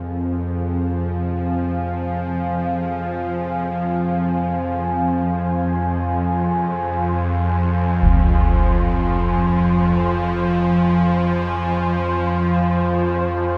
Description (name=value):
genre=dark ambient drone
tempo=free time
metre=none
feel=none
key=F minor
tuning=A4 = 440 Hz
part: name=deep dark ambient pad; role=sustained chords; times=0.0-13.6 s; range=F3 to Ab5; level=-25 LUFS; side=equal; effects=chorus, built-in reverb
part: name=gamelan-type bronze metallophone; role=arpeggios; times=0.0-2.7 s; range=none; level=barely audible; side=none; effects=none
part: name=bowed-like drone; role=drone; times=0.0-13.6 s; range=F2 to F3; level=-23 LUFS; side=equal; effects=built-in reverb
part: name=wind-like tuned noise texture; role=texture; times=0.0-13.6 s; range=C5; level=-32 LUFS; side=equal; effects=built-in reverb, analog chorus
part: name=concert bass drum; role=percussion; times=8.0-8.2 s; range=none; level=-22 LUFS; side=equal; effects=low-pass filter on kick
room=wet cathedral reverb, RT60 6.2 s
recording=dreamy mix soaked in reverb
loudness=-20 LUFS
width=mono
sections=0.0-13.6 A section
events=fade-in on synth texture 0.0-13.6; fade-out on ambient pad 0.0-13.6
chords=0.0 Fm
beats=free time